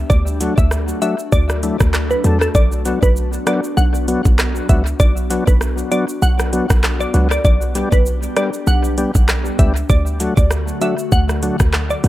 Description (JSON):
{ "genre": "dancehall", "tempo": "98 BPM", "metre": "4/4", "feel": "swing 56% on 16ths", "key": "B minor", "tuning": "A4 = 439 Hz", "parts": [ { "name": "glassy FM pad", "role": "sustained chords", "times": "0.0-12.1 s", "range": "D3 to G4", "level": "-26 LUFS", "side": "left 2 dB", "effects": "ensemble chorus, built-in reverb" }, { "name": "short 808-style bass", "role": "bass", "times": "0.0-12.1 s", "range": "B1 to E2", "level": "-17 LUFS", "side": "equal", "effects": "none" }, { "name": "glassy wavetable pluck", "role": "melody", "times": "0.1-12.0 s", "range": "A4 to F#5", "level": "-23 LUFS", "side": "equal", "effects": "chorus, tape echo" }, { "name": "island pop drum kit", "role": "drums", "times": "0.1-12.1 s", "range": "handclaps, hi-hat, kick drum, rim click, shaker", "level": "-17 LUFS", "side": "equal", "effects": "none" }, { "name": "tonewheel organ", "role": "accompaniment", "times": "0.4-12.1 s", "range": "F#3 to A4", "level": "-23 LUFS", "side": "left 2 dB", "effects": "chorus vibrato, tape echo" } ], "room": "little or no reverb", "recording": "echo-heavy mix", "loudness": "-14 LUFS", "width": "side -15 dB against mid", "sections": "0.0-12.1 A section", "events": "none", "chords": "0.1 D; 2.5 Bm; 7.4 G/B; 9.9 D", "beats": "| 0.10 0.71 1.32 1.94 | 2.55 3.16 3.77 4.39 | 5.00 5.61 6.22 6.83 | 7.45 8.06 8.67 9.28 | 9.90 10.51 11.12 11.73" }